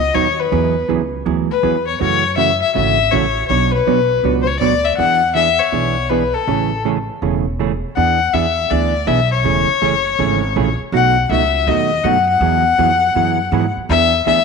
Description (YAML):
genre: country, western swing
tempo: 161 BPM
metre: 4/4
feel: swing 66% on 8ths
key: unclear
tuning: A4 = 441 Hz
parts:
  - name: rich fiddle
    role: melody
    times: 0.0-14.4 s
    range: A4 to F#5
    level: -16 LUFS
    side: left 7 dB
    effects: none
  - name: upright bass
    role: bass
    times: 0.0-14.4 s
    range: E1 to G#2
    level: -22 LUFS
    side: right 1 dB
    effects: none
  - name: hollow-body jazz guitar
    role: accompaniment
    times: 0.1-14.4 s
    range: B2 to C#5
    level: -19 LUFS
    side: right 12 dB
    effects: none
room: moderate echo chamber reverb, RT60 2.2 s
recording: 1960s-style stereo with parts hard left and right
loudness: -14 LUFS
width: side -5 dB against mid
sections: 0.0-8.0 A section; 8.0-14.4 B section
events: none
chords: 0.0 B; 0.5 Eadd9; 2.0 F#m7; 3.5 Bmadd9; 5.0 E7; 6.5 Amaj7; 8.0 E7; 9.4 Amaj7; 10.9 B7; 12.4 Eadd9; 13.9 E7